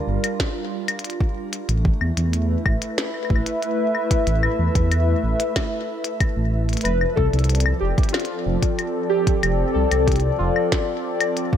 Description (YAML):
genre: IDM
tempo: 93 BPM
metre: 4/4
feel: straight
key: unclear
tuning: A4 = 440 Hz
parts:
  - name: hollow soft pad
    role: sustained chords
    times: 0.0-11.6 s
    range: F3 to E5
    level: -24 LUFS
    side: left 1 dB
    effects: chorus, shimmer reverb
  - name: dark detuned saw bass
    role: bass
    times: 0.1-10.5 s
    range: F1 to E2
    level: -21 LUFS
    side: equal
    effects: none
  - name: glitchy drum kit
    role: drums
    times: 0.2-11.5 s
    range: claves, hi-hat, snare drum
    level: -27 LUFS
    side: left 2 dB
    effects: none
  - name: electronic kick drum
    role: drums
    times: 0.4-11.6 s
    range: none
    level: -21 LUFS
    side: equal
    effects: none
  - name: warbly lo-fi synth keys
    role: melody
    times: 6.8-11.6 s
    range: F4 to B4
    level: -24 LUFS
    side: left 1 dB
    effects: chorus, phaser, shimmer reverb
room: light reverb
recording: none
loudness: -19 LUFS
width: side -9 dB against mid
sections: 0.0-11.6 A section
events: none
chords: 0.0 Gm7; 1.7 Asus2; 6.8 F6